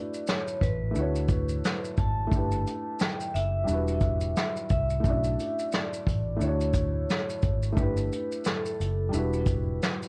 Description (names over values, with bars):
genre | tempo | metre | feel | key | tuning
lo-fi hip hop | 88 BPM | 4/4 | swing 59% on 16ths | E dorian | A4 = 439 Hz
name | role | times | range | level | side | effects
vibraphone with medium mallets | melody | 0.0-10.1 s | A4 to A5 | -36 LUFS | equal | none
felt-muted upright piano | accompaniment | 0.0-10.1 s | G3 to D5 | -35 LUFS | equal | none
vintage brush drum kit | drums | 0.1-10.1 s | hi-hat, kick drum, shaker, snare drum | -31 LUFS | equal | none
vintage muted fingered electric bass | bass | 0.6-9.8 s | E1 to D2 | -32 LUFS | equal | tube saturation
room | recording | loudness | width
light reverb | worn, warbling old tape, cassette tape, warbly pitch drift | -28 LUFS | mono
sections
0.0-10.1 A section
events
none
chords
0.0 Bm7; 1.0 Dmaj9; 2.3 G69; 3.7 Em9; 5.0 Bm7; 6.4 Dmaj9; 7.8 G69; 9.1 Em9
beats
0.27 0.95 1.63 | 2.31 3.00 3.68 4.36 | 5.04 5.72 6.41 7.09 | 7.77 8.45 9.13 9.81